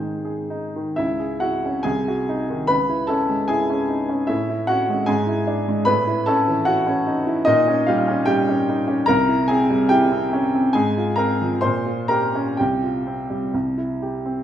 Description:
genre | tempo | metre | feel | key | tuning
classical, romantic character piece for solo piano | 59-77 BPM | 2/4 | rubato | C# minor | A4 = 440 Hz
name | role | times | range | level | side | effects
clear upright piano | solo | 0.0-14.4 s | B#1 to C6 | -18 LUFS | equal | none
room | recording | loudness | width
wet recital hall reverb, RT60 1.3 s | minimal, uncompressed stereo recording | -18 LUFS | side -10 dB against mid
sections
1.0-14.4 A section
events
none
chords
0.0 G#; 1.0 C#m; 1.9 G#7/B#; 2.7 C#m; 4.3 Amaj7; 5.1 E7/G#; 5.9 A6; 7.5 Gdim/Bb; 9.1 C; 10.8 Fm/Ab; 11.6 Gm7b5/Bb; 12.6 Csus4; 13.5 C

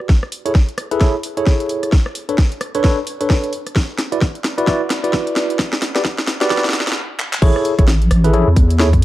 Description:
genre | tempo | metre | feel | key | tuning
UK garage, two-step garage | 131 BPM | 4/4 | swing 60% on 16ths | A major | A4 = 439 Hz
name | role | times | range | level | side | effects
tine electric piano | stabs | 0.0-8.9 s | D4 to D5 | -20 LUFS | equal | medium stereo tremolo, low-pass filter, tape echo
garage drum kit | drums | 0.0-9.0 s | crash cymbal, handclaps, hi-hat, rim click, snare drum | -21 LUFS | equal | none
electronic kick drum | drums | 0.1-9.0 s | none | -13 LUFS | equal | none
deep soft wobble bass | bass | 7.4-9.0 s | A1 to E2 | -13 LUFS | equal | chorus
room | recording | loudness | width
light reverb | dark, warm production, vinyl crackle, high-pass filter | -14 LUFS | side -15 dB against mid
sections
0.1-7.4 A section; 7.4-9.0 B section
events
build-up 0.1-7.4; drum fill 0.1-7.0, 7.2; filter sweep 0.1-7.4; stop 7.0-7.4; drop 7.4-9.0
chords
0.1 Amaj7; 1.9 Bm9; 3.5 D69; 5.6 Gmaj7; 7.4 Amaj7

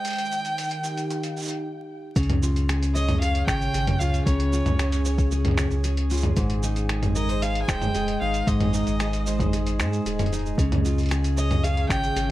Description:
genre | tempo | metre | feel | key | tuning
folktronica | 114 BPM | 4/4 | straight | Db lydian | A4 = 440 Hz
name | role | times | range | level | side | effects
warm violin | melody | 0.0-12.3 s | Db5 to Ab5 | -29 LUFS | equal | digital delay
warbly tape-like pad | sustained chords | 0.0-12.3 s | Db3 to F5 | -31 LUFS | right 2 dB | chorus, built-in reverb
lo-fi sampler-style drum kit | drums | 0.0-12.3 s | finger snaps, hi-hat, shaker, toms | -29 LUFS | equal | none
picked steel-string acoustic guitar | arpeggios | 2.2-12.3 s | Ab2 to Db5 | -28 LUFS | left 1 dB | digital delay
warm sub bass | bass | 2.2-12.3 s | Eb1 to Ab2 | -25 LUFS | equal | none
electronic kick drum | drums | 2.2-12.0 s | none | -24 LUFS | equal | none
room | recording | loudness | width
light reverb | dark, warm production, vinyl crackle | -21 LUFS | side -15 dB against mid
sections
0.0-2.2 A section; 2.2-12.3 B section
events
stop 1.6-2.2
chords
0.1 Ebadd9; 2.2 Db; 6.4 Ab; 10.6 Db

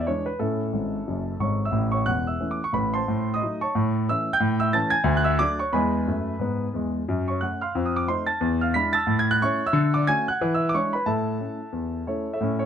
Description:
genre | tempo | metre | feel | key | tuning
jazz, stride piano | 180 BPM | 4/4 | swing 58% on 8ths | A major | A4 = 440 Hz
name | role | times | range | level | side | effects
warm grand piano | solo | 0.0-12.7 s | E1 to B6 | -22 LUFS | equal | none
room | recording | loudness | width
light reverb | rough home demo mix | -22 LUFS | side -8 dB against mid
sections
0.0-1.7 A section; 1.7-12.4 A section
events
grand piano fill 0.7-1.7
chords
0.4 A; 3.1 Adim7; 3.7 A; 4.4 A7; 5.1 D; 5.7 E; 7.1 F#m; 7.7 F7; 8.4 E7b9; 9.1 A; 9.7 Dmaj7; 10.4 E7; 11.1 A

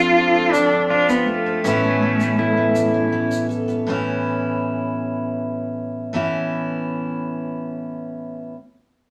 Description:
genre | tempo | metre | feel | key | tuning
acoustic folk duo or small band | 72-81 BPM | 3/4 | straight | A major | A4 = 440 Hz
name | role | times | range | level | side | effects
clear cello | melody | 0.0-3.1 s | A3 to F4 | -21 LUFS | equal | none
pedal steel guitar | second line | 0.0-3.5 s | C#4 to A4 | -26 LUFS | equal | none
picked steel-string acoustic guitar | accompaniment | 0.0-8.6 s | A2 to A4 | -25 LUFS | equal | none
picked twelve-string acoustic guitar | arpeggios | 0.0-3.9 s | E3 to A4 | -28 LUFS | equal | none
tube shaker | percussion | 0.5-3.8 s | none | -42 LUFS | equal | none
room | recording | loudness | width
wet studio reverb, RT60 0.9 s | none | -21 LUFS | mono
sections
0.0-3.9 A section; 3.9-8.5 B section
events
slowing down 3.9-8.5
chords
0.0 F6; 1.6 Aadd9

